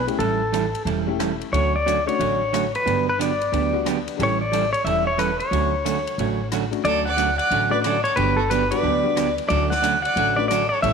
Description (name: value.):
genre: country, western swing.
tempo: 180 BPM.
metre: 4/4.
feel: swing 64% on 8ths.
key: D major.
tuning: A4 = 440 Hz.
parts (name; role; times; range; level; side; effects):
pedal steel guitar; melody; 0.0-10.9 s; A4 to F#5; -22 LUFS; left 3 dB; none.
upright bass; bass; 0.0-10.9 s; E1 to D2; -28 LUFS; left 1 dB; none.
honky-tonk upright piano; accompaniment; 0.1-4.4, 6.7-10.5 s; G3 to G4; -29 LUFS; left 14 dB; none.
swinging big-band drum kit; drums; 0.1-10.9 s; hi-hat, ride cymbal, rim click, snare drum; -35 LUFS; left 12 dB; none.
vintage hollow-body jazz guitar; accompaniment; 0.2-10.9 s; D3 to A4; -25 LUFS; right 11 dB; none.
clear fiddle; second line; 6.9-10.9 s; F#4 to D5; -28 LUFS; right 10 dB; none.
room: moderate echo chamber reverb, RT60 1.9 s, small room ambience.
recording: 1960s-style stereo with parts hard left and right.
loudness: -19 LUFS.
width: side -6 dB against mid.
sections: 0.0-10.9 A section.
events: none.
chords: 0.2 A7; 1.5 Dmaj7; 2.9 Gmaj7; 4.2 A7; 5.5 Dmaj7; 8.2 Gmaj7; 9.5 Dmaj7.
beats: | 0.20 0.53 0.86 1.20 | 1.53 1.86 2.19 2.52 | 2.86 3.19 3.52 3.85 | 4.19 4.52 4.85 5.18 | 5.51 5.85 6.18 6.51 | 6.84 7.18 7.51 7.84 | 8.17 8.51 8.84 9.17 | 9.50 9.84 10.17 10.50 | 10.84.